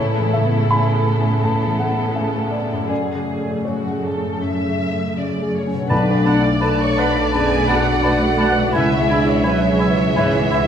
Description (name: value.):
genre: cinematic, emotional film score for orchestra.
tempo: 78-86 BPM.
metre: 4/4.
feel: rubato.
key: B dorian.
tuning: A4 = 444 Hz.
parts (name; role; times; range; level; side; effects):
warm studio violin section; second line; 0.0-10.7 s; E4 to C#6; -26 LUFS; left 2 dB; none.
dark studio viola section; accompaniment; 0.0-10.7 s; C#3 to F#5; -25 LUFS; right 2 dB; none.
felt-muted upright piano; accompaniment; 0.0-10.7 s; B1 to B5; -23 LUFS; left 1 dB; none.
concert harp; arpeggios; 0.0-10.7 s; F#2 to G#5; -26 LUFS; left 4 dB; none.
rich studio cello section; bass; 0.0-10.7 s; F#2 to B3; -23 LUFS; right 2 dB; none.
mellow wooden-headed alto flute; melody; 5.9-10.7 s; B3 to C#5; -24 LUFS; right 2 dB; none.
warm studio violin section; melody; 5.9-10.7 s; D5 to E5; -25 LUFS; left 1 dB; none.
clear oboe; second line; 5.9-10.7 s; G#5 to A5; -27 LUFS; right 1 dB; none.
hollow concert flute; second line; 5.9-10.6 s; B5; -28 LUFS; left 1 dB; none.
mellow clarinet; second line; 5.9-10.7 s; D5 to E5; -28 LUFS; left 1 dB; none.
dark French horn section; sustained chords; 5.9-10.7 s; A3 to E4; -26 LUFS; equal; none.
dark studio double bass section; bass; 5.9-10.7 s; B1 to C#2; -26 LUFS; right 3 dB; none.
timpani; percussion; 5.9-6.9 s; B2; -23 LUFS; left 1 dB; none.
room: wet recital hall reverb, RT60 1.4 s.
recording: minimal, uncompressed stereo recording.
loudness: -16 LUFS.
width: side -8 dB against mid.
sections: 0.0-5.9 A section; 5.9-10.7 A section.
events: none.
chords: 0.0 Aadd9; 2.9 F#madd9; 5.9 Bm7; 8.7 C#m7.